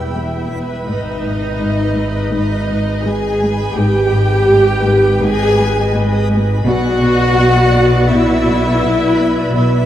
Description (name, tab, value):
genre	cinematic, suspense film score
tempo	83 BPM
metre	4/4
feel	straight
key	G# harmonic minor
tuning	A4 = 439 Hz
part	rich symphonic violin section	melody	0.0-9.9 s	B4 to G5	-27 LUFS	right 1 dB	none
part	rich chamber violin section	second line	0.0-9.9 s	G4 to G#5	-23 LUFS	left 1 dB	none
part	rich chamber viola section	accompaniment	0.0-9.9 s	G3 to G#4	-16 LUFS	equal	none
part	backwards swelling texture	sustained chords	0.0-9.9 s	B4 to B5	-26 LUFS	right 1 dB	built-in reverb
part	clear studio double bass section	bass	0.0-9.9 s	E1 to B1	-20 LUFS	equal	none
part	rich studio cello section	bass	0.0-9.9 s	E2 to B2	-19 LUFS	equal	none
part	rich symphonic cello section	riff	0.2-9.8 s	E2 to B3	-21 LUFS	left 1 dB	none
room	wet cathedral reverb, RT60 5.9 s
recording	in a vast, echoing space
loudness	-12 LUFS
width	side -11 dB against mid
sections	0.9-9.9 A section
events	none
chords	0.0 Em; 0.9 G#m; 6.7 Bm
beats	0.15 | 0.88 1.60 2.32 3.04 | 3.77 4.49 5.21 5.94 | 6.66 7.38 8.11 8.83 | 9.55